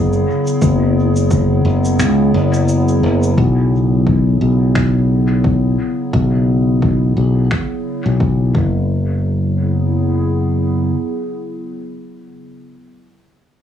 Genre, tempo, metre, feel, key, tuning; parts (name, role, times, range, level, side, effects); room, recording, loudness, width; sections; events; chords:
ambient dub; 87 BPM; 4/4; swing 57% on 16ths; A4 = 444 Hz
warbly tape-like pad; sustained chords; 0.0-12.4 s; C#3 to G#4; -18 LUFS; right 1 dB; chorus, built-in reverb, cassette tape, plate reverb
modern bright fingered electric bass; bass; 0.0-10.9 s; F#1 to C#2; -14 LUFS; left 1 dB; tube saturation
electronic shaker and finger snaps; drums; 0.1-7.7 s; -28 LUFS; left 1 dB; cassette tape, dub echo
electronic kick drum; drums; 0.6-8.7 s; -21 LUFS; left 1 dB; overdrive, cassette tape
light reverb; home recording on cassette, studio ambience; -13 LUFS; side -9 dB against mid
0.0-3.4 A section; 3.4-8.9 B section; 8.9-11.6 C section
kick drops out 2.0-3.4
0.0 F#sus2; 3.4 Bsus4; 8.5 F#5; 8.9 F#sus2